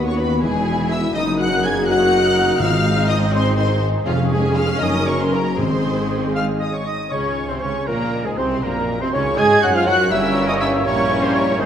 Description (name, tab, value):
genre	classical, dramatic, fast romantic movement for symphony orchestra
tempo	81 BPM (dotted quarters)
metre	6/8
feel	rubato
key	Db major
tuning	A4 = 440 Hz
part	dark symphonic violin section	melody	0.0-11.7 s	F5 to Ab6	-26 LUFS	left 1 dB	none
part	warm symphonic violin section	second line	0.0-11.7 s	Ab3 to Ab5	-26 LUFS	left 3 dB	none
part	warm studio viola section	accompaniment	0.0-11.7 s	Eb3 to Bb4	-24 LUFS	right 1 dB	none
part	mellow French horn section	sustained chords	0.0-11.7 s	F3 to Ab4	-24 LUFS	left 1 dB	none
part	concert harp	arpeggios	0.0-11.7 s	F2 to Db6	-26 LUFS	left 5 dB	none
part	mellow tuba	bass	0.0-11.7 s	E1 to Ab2	-27 LUFS	right 2 dB	none
part	rich symphonic cello section	bass	0.0-11.7 s	D#2 to Ab3	-27 LUFS	right 2 dB	none
part	warm symphonic double bass section	bass	0.0-11.7 s	E1 to Ab2	-27 LUFS	right 2 dB	none
part	timpani	percussion	2.6-3.3, 5.6-6.3 s	Ab2	-29 LUFS	right 1 dB	none
part	clear oboe	second line	6.3-11.7 s	Ab4 to Ab5	-28 LUFS	right 1 dB	none
part	bright clarinet	second line	6.4-11.7 s	Ab4 to Ab5	-28 LUFS	equal	none
part	large flute ensemble	second line	7.1-11.7 s	Db5 to Ab6	-26 LUFS	equal	none
part	mellow bassoon	accompaniment	7.1-11.7 s	Ab2 to Bb3	-26 LUFS	right 2 dB	none
part	warm trombone section	sustained chords	7.1-11.7 s	G2 to Ab3	-28 LUFS	right 2 dB	none
part	clear trumpet	stabs	7.1-11.7 s	Ab4 to Ab5	-26 LUFS	right 3 dB	none
room	wet recital hall reverb, RT60 1.6 s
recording	none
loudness	-16 LUFS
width	side -9 dB against mid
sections	0.0-7.1 A section; 7.1-11.7 B section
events	none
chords	0.4 E; 1.1 Ebm7/Gb; 2.6 Ab; 4.1 Db/F; 4.8 Ebm7/Gb; 5.6 Ab; 7.1 Db; 8.6 Ebm/Bb; 10.1 Gdim7